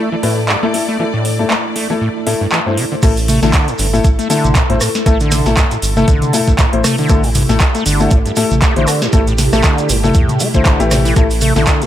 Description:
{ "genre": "acid house", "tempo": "118 BPM", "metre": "4/4", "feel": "swing 56% on 16ths", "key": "unclear", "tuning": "A4 = 445 Hz", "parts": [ { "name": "string machine, full ensemble", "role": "sustained chords", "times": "0.0-11.9 s", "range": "A3 to D5", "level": "-23 LUFS", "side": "right 1 dB", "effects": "phaser, ensemble chorus, sidechain pumping" }, { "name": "acid bass, saw", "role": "riff", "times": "0.0-11.9 s", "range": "G2 to A3", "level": "-18 LUFS", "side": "equal", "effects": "overdrive, analog chorus, digital delay" }, { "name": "clear studio string section", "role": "texture", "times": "0.0-3.1 s", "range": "E4 to D5", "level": "-26 LUFS", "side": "left 1 dB", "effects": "sidechain pumping" }, { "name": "dark grand piano", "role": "stabs", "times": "0.2-11.6 s", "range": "A3 to C5", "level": "-19 LUFS", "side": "left 5 dB", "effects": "digital delay" }, { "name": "booming analog drum machine", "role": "drums", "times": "0.2-11.9 s", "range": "crash cymbal, handclaps, hi-hat, rim click, snare drum, toms", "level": "-18 LUFS", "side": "equal", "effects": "overdrive" }, { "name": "round analog bass", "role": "bass", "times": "3.0-11.7 s", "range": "G1 to E2", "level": "-18 LUFS", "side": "right 1 dB", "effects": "sidechain pumping" }, { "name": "electronic kick drum", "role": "drums", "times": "3.0-11.8 s", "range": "none", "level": "-12 LUFS", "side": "right 1 dB", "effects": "overdrive" }, { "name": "shekere", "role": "percussion", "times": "3.0-11.9 s", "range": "none", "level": "-25 LUFS", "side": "right 5 dB", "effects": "none" } ], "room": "digital ambience", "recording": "none", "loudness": "-11 LUFS", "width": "side -11 dB against mid", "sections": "0.0-3.0 A section; 3.0-11.9 B section", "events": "drop 3.0-11.9", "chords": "0.0 A5" }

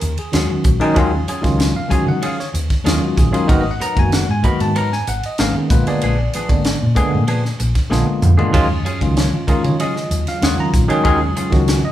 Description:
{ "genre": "electric jazz fusion", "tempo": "95 BPM", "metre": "4/4", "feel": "straight", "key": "Eb minor", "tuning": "A4 = 440 Hz", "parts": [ { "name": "bell-like tine electric piano", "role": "accompaniment", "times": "0.0-11.9 s", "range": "D3 to Cb6", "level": "-18 LUFS", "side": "left 1 dB", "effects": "medium stereo tremolo" }, { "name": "clean electric guitar", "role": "stabs", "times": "0.0-11.7 s", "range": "F3 to Bb4", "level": "-26 LUFS", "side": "equal", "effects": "none" }, { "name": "hollow-body short-scale fingered electric bass", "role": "bass", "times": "0.0-11.9 s", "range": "Gb1 to Eb3", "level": "-20 LUFS", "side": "equal", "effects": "none" }, { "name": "crisp fusion drum kit", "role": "drums", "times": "0.0-11.8 s", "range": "crash cymbal, hi-hat, kick drum, ride cymbal, snare drum, toms", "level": "-19 LUFS", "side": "equal", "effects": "none" }, { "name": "ethereal airy pad", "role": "sustained chords", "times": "9.6-11.9 s", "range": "Db3 to F4", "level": "-27 LUFS", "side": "right 1 dB", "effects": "ensemble chorus, built-in reverb" } ], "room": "moderate large studio reverb, RT60 0.8 s", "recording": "band playing live in one room", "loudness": "-14 LUFS", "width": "side -12 dB against mid", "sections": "0.0-11.9 A section", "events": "drum fill 7.9-8.5", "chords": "0.0 Ebm11; 3.5 Abm9; 5.7 Bb7b9; 8.5 Ebm11" }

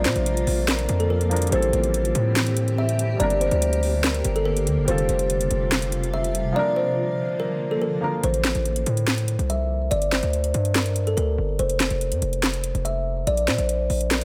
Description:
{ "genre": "hip hop, trap", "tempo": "143 BPM", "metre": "4/4", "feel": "half-time", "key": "A phrygian", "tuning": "A4 = 440 Hz", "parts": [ { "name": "felt-muted upright piano", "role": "accompaniment", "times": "0.0-8.3 s", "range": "F3 to Bb4", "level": "-33 LUFS", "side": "equal", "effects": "none" }, { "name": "granular cloud pad", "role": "sustained chords", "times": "0.0-8.2 s", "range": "C3 to G4", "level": "-32 LUFS", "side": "equal", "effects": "built-in reverb" }, { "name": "hard-hitting 808-style bass", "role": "bass", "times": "0.0-14.2 s", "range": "F1 to Bb2", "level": "-26 LUFS", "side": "equal", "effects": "none" }, { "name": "kalimba", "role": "melody", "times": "0.1-14.2 s", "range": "A4 to E5", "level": "-28 LUFS", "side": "equal", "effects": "none" }, { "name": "trap drum kit", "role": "drums", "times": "0.1-14.2 s", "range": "handclaps, hi-hat, snare drum", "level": "-28 LUFS", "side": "equal", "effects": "none" } ], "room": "little or no reverb", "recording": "none", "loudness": "-23 LUFS", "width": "mono", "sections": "0.0-8.2 A section; 8.2-14.2 B section", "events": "drums muted 6.6-8.2", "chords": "0.0 Bb; 1.5 Am7; 3.2 Gm; 4.9 Fadd9; 6.6 Bb; 8.2 Am; 9.9 Gm; 11.6 F5; 13.3 Bbsus2" }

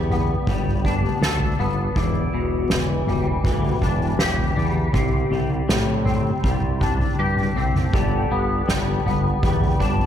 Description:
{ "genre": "post-rock", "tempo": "80 BPM", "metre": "4/4", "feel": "straight", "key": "G major", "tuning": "A4 = 437 Hz", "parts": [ { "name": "pedal steel guitar", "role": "sustained chords", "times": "0.0-10.1 s", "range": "B3 to G5", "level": "-32 LUFS", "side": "left 1 dB", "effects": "none" }, { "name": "twangy electric guitar", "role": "arpeggios", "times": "0.0-10.1 s", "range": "E2 to A4", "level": "-25 LUFS", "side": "left 3 dB", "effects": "ensemble chorus, digital delay" }, { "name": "growling fingered electric bass", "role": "bass", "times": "0.0-10.1 s", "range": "E1 to A2", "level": "-25 LUFS", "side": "right 1 dB", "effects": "overdrive" }, { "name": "soft-mallet drum kit", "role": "drums", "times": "0.1-10.1 s", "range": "kick drum, snare drum, toms", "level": "-22 LUFS", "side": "equal", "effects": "none" } ], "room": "light reverb", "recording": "none", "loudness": "-19 LUFS", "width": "side -9 dB against mid", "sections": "0.0-10.1 A section", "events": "none", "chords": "0.0 Gadd9; 2.0 Em7; 5.0 Csus2; 7.9 Gadd9" }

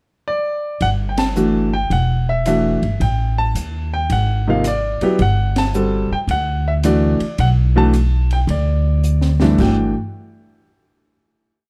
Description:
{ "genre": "jazz piano trio", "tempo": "109 BPM", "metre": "4/4", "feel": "swing 67% on 8ths", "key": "G major", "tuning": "A4 = 443 Hz", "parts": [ { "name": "clear grand piano", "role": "melody", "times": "0.3-9.9 s", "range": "G2 to A5", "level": "-21 LUFS", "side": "equal", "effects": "none" }, { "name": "upright bass", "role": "bass", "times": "0.8-9.9 s", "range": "E1 to Eb2", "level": "-20 LUFS", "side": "equal", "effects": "none" }, { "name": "open jazz drum kit", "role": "drums", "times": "0.8-9.8 s", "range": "crash cymbal, hi-hat, kick drum, ride cymbal, rim click, snare drum", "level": "-31 LUFS", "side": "equal", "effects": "none" } ], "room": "little or no reverb", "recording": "dark, warm production", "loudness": "-17 LUFS", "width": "mono", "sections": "0.0-0.8 pickup bar; 0.8-9.6 A section; 9.6-11.7 final chord", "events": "band accent 1.1, 5.5; drum fill 9.0-9.6", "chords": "0.0 N.C.; 0.8 Gsus2; 1.9 Em11; 3.0 Gsus2/A; 4.1 Ab7(no3); 5.2 Gmaj9; 9.6 N.C." }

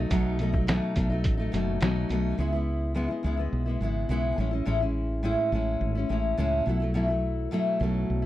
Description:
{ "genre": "indie pop, bedroom pop", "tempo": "105 BPM", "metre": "4/4", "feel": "straight", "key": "unclear", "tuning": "A4 = 440 Hz", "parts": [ { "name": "fingerpicked steel-string acoustic guitar", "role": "accompaniment", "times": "0.0-8.3 s", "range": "A2 to E4", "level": "-27 LUFS", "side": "left 1 dB", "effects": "wide subtle chorus, vibrato effect" }, { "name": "woody fretless electric bass", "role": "bass", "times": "0.0-8.3 s", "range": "F#1 to C#2", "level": "-29 LUFS", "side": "equal", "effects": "none" }, { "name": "lo-fi sampler-style drum kit", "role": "drums", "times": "0.1-2.2 s", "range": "hi-hat, kick drum, snare drum", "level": "-29 LUFS", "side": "equal", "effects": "none" } ], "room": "little or no reverb", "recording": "dry, close 1970s-style studio recording", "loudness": "-25 LUFS", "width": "side -14 dB against mid", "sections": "0.1-2.4 A section; 2.4-8.3 B section", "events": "none", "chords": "0.1 B7; 2.4 C#m7; 4.4 Amaj7; 6.7 B7sus4" }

